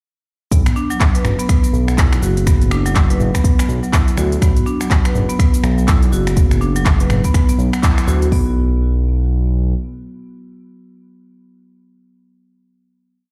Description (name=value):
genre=afro house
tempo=123 BPM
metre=4/4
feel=swing 59% on 16ths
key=B minor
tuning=A4 = 440 Hz
part: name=marimba with medium hard mallets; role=arpeggios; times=0.5-8.5 s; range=F#3 to B4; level=-24 LUFS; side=equal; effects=sidechain pumping, dub echo
part: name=smooth synth bass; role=bass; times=0.5-9.7 s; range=F#1 to D2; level=-20 LUFS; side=equal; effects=sidechain pumping
part: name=afro-pop drum kit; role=drums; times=0.5-8.5 s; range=hi-hat, kick drum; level=-16 LUFS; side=equal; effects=none
part: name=afro-pop drum kit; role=drums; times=0.5-8.3 s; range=finger snaps, handclaps, hi-hat, shaker, toms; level=-25 LUFS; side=equal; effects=none
room=little or no reverb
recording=played on a big sound system in a bare room, large studio reverb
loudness=-15 LUFS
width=mono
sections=0.5-8.3 drop; 8.3-12.2 final note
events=drop 0.5-8.3; band accent 7.8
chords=0.5 Bm; 8.3 N.C.